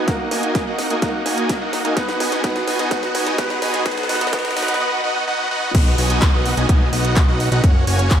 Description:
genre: EDM, festival progressive house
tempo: 127 BPM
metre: 4/4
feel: straight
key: B major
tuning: A4 = 440 Hz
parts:
  - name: warm grand piano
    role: accompaniment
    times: 0.0-5.8 s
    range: A#3 to B4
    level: -25 LUFS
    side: right 1 dB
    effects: sidechain pumping, digital delay
  - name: supersaw chords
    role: riff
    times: 0.0-8.2 s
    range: A#3 to G#5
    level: -21 LUFS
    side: right 1 dB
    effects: vintage 12-bit sampler grit, sidechain pumping, low-pass filter, digital delay
  - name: riser, swell and downlifter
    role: sound effects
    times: 0.0-8.2 s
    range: none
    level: -28 LUFS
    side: left 1 dB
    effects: none
  - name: electronic kick drum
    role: drums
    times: 0.1-8.2 s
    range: none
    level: -17 LUFS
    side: equal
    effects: overdrive
  - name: house drum kit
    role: drums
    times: 0.1-8.2 s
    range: crash cymbal, handclaps, hi-hat, snare drum, toms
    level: -26 LUFS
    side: equal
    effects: overdrive, high-pass filter on snare, high-pass filter on hats, high-pass filter on toms, high-pass filter on cymbals, high-pass filter on room
  - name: fat analog bass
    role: bass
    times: 5.7-8.2 s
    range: F#1 to B1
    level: -20 LUFS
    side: equal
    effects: sidechain pumping
room: moderate lush hall reverb, RT60 1.8 s, digital ambience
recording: high-pass filter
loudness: -16 LUFS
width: side -9 dB against mid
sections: 0.0-5.7 A section; 5.7-8.2 B section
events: build-up 0.0-5.7; drum fill 0.0-4.8, 5.3-5.7; riser 0.0-4.8; filter sweep on supersaw synth 0.0-5.7; filter sweep 0.0-5.7; swell 4.8-5.7; drop 5.7-8.2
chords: 0.1 F#; 2.0 B6; 3.9 B; 7.6 F#

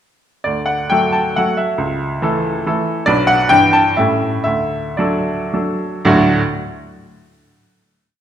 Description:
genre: classical, romantic triple-time dance for piano with dotted rhythms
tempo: 107-149 BPM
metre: 3/4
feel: rubato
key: D major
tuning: A4 = 441 Hz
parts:
  - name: bright baby grand piano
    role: solo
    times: 0.4-6.4 s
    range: B1 to A5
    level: -14 LUFS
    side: equal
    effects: none
room: wet recital hall reverb, RT60 1.5 s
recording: none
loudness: -14 LUFS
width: side -10 dB against mid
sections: 0.5-6.0 A section; 6.0-7.5 final chord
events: slowing down 2.5-6.0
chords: 0.5 D; 1.8 A/C#; 3.1 Bm; 3.5 Em7/G; 4.0 A7; 4.5 D

